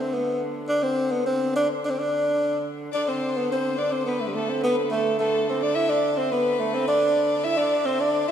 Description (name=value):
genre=medieval dance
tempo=106 BPM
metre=2/4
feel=straight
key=unclear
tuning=A4 = 440 Hz
part: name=mellow tenor saxophone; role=melody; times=0.0-8.3 s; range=G3 to E4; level=-22 LUFS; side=equal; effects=none
part: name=dark hurdy-gurdy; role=drone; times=0.0-8.3 s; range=D3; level=-33 LUFS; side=right 1 dB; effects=none
part: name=clear fiddle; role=second line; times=2.9-8.3 s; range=A4 to E5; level=-31 LUFS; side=left 4 dB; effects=none
part: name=concert harp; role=second line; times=3.0-8.3 s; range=A4 to E5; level=-30 LUFS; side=right 6 dB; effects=none
room=wet church reverb, RT60 2.8 s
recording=minimal, uncompressed stereo recording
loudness=-21 LUFS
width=side -9 dB against mid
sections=0.0-2.9 A section; 2.9-8.3 A section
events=none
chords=none